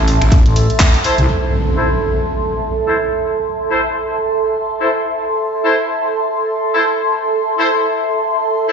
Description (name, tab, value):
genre	bass house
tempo	124 BPM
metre	4/4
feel	swing 57% on 16ths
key	A minor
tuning	A4 = 440 Hz
part	growling FM bass	bass	0.0-1.3 s	A1 to C2	-13 LUFS	equal	sidechain pumping
part	airy breathy pad	texture	0.0-8.7 s	A4 to C6	-17 LUFS	right 2 dB	chorus, phaser, sidechain pumping
part	garage drum kit	drums	0.1-1.3 s	finger snaps, handclaps, hi-hat	-20 LUFS	equal	overdrive, small room ambience
part	electronic kick drum	drums	0.3-0.9 s	none	-11 LUFS	equal	small room ambience
part	bright horn section	stabs	1.0-8.7 s	E4 to C5	-20 LUFS	left 1 dB	vintage 12-bit sampler grit, sidechain pumping, low-pass filter, dub echo
part	impact	sound effects	1.3-3.2 s	none	-21 LUFS	equal	none
room	wet lush hall reverb, RT60 1.5 s, digital ambience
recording	played on a big sound system in a bare room, large studio reverb, nothing above 7.8 kHz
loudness	-14 LUFS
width	side -6 dB against mid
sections	0.0-1.3 A section; 1.3-8.7 B section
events	band accent 0.8; impact 1.3-3.2; filter sweep on horn section 1.3-8.7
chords	0.0 Am